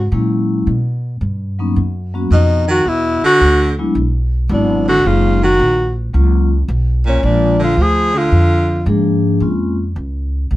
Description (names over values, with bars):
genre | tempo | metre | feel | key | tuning
jazz, small-group swing and bop | 110 BPM | 4/4 | swing 69% on 8ths | unclear | A4 = 436 Hz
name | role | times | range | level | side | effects
dark tenor saxophone | melody | 0.0-8.9 s | Db4 to Ab4 | -15 LUFS | equal | none
clear baritone saxophone | second line | 0.0-8.9 s | Bb2 to F3 | -20 LUFS | right 2 dB | none
upright bass | bass | 0.0-10.6 s | Gb1 to B2 | -16 LUFS | equal | none
vibraphone with medium mallets | accompaniment | 0.1-9.8 s | F3 to Ab4 | -17 LUFS | left 2 dB | none
room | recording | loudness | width
light reverb | dark, warm production | -12 LUFS | side -16 dB against mid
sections
0.0-9.4 A section; 9.4-10.6 B section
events
none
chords
0.0 Gb9; 0.7 Bmaj7; 2.9 E9; 5.0 Gb6; 7.2 Bb7; 9.4 Bbm7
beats
0.12 | 0.67 1.22 1.76 2.31 | 2.85 3.40 3.95 4.50 | 5.04 5.59 6.13 6.68 | 7.23 7.77 8.32 8.87 | 9.41 9.96 10.51